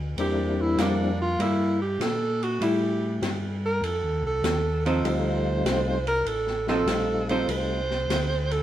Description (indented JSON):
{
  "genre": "soul jazz organ trio",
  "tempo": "99 BPM",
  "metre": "4/4",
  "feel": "swing 69% on 8ths",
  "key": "unclear",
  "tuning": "A4 = 440 Hz",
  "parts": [
    { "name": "mellow tonewheel organ", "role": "bass", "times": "0.0-8.6 s", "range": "A1 to Bb2", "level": "-29 LUFS", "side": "left 1 dB", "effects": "slow rotary speaker" },
    { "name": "breathy alto saxophone", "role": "melody", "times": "0.2-8.6 s", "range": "D4 to C5", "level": "-27 LUFS", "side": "right 2 dB", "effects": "none" },
    { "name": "percussive tonewheel organ", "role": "melody", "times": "0.2-1.1, 5.0-7.8 s", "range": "G3 to F4", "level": "-28 LUFS", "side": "left 3 dB", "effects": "chorus vibrato, fast rotary speaker" },
    { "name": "open jazz drum kit", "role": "drums", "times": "0.2-8.6 s", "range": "hi-hat, ride cymbal, snare drum", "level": "-32 LUFS", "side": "equal", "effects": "none" },
    { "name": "archtop guitar, miked and amplified", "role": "accompaniment", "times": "0.8-7.5 s", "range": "F3 to A4", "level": "-27 LUFS", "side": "equal", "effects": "none" }
  ],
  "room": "moderate studio reverb, RT60 0.8 s",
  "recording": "heard from further back in the room",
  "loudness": "-23 LUFS",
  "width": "side -12 dB against mid",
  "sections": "0.0-8.6 A section",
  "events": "alto saxophone solo 0.0-8.6",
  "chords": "0.0 C7; 3.8 F7",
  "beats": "0.18 0.79 | 1.40 2.01 2.62 3.23 | 3.83 4.44 5.05 5.66 | 6.27 6.88 7.48 8.09"
}